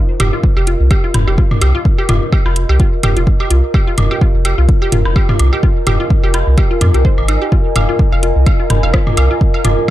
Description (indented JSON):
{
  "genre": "minimal techno",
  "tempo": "127 BPM",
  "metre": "4/4",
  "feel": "swing 56% on 16ths",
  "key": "F minor",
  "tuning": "A4 = 439 Hz",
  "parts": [
    { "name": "warbly tape-like pad", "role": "texture", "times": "0.0-9.9 s", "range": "F4 to Bb5", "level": "-21 LUFS", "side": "equal", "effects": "chorus, built-in reverb, sidechain pumping" },
    { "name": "resonant blip pluck", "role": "riff", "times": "0.2-9.7 s", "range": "Eb4 to F5", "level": "-22 LUFS", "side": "equal", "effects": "chorus, cassette tape, sidechain pumping, dub echo" },
    { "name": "round analog bass", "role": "bass", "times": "0.2-9.8 s", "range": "F1 to F2", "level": "-13 LUFS", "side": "equal", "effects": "sidechain pumping" },
    { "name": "garage drum kit", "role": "drums", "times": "0.2-9.8 s", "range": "hi-hat, rim click", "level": "-22 LUFS", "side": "right 1 dB", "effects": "none" },
    { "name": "electronic toms and woodblock", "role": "percussion", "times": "0.2-9.9 s", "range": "none", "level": "-19 LUFS", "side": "equal", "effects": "none" },
    { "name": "electronic kick drum", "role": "drums", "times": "0.4-9.5 s", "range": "none", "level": "-12 LUFS", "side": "equal", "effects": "none" }
  ],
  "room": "digital ambience",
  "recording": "dark, warm production",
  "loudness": "-10 LUFS",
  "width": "side -14 dB against mid",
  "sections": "0.0-9.9 A section",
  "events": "none",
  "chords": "0.0 Fm"
}